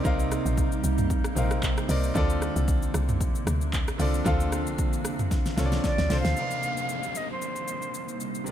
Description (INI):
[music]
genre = amapiano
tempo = 114 BPM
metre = 4/4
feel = swing 55% on 16ths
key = C dorian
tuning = A4 = 441 Hz
[part]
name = clear concert grand piano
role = accompaniment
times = 0.0-8.5 s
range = C3 to F5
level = -31 LUFS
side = equal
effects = none
[part]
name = granular cloud pad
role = sustained chords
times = 0.0-8.5 s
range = C3 to Eb4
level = -33 LUFS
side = right 2 dB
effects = built-in reverb, sidechain pumping
[part]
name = woody log drum bass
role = bass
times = 0.1-6.3 s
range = Bb1 to D2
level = -27 LUFS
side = equal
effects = none
[part]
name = deep house drum kit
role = drums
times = 0.1-8.5 s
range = handclaps, hi-hat, kick drum, rim click, shaker, snare drum, toms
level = -28 LUFS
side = equal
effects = none
[part]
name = silver concert flute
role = melody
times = 5.9-8.2 s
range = C5 to F5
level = -31 LUFS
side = right 1 dB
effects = tape echo
[part]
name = downlifter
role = sound effects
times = 6.4-8.5 s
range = none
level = -37 LUFS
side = equal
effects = none
[sound]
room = little or no reverb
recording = none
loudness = -24 LUFS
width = side -10 dB against mid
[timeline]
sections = 0.0-6.4 A section; 6.4-8.5 B section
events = drop 0.0-6.4; drum fill 5.3-6.4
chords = 0.0 Cm7; 2.2 Dm7; 6.4 Cm7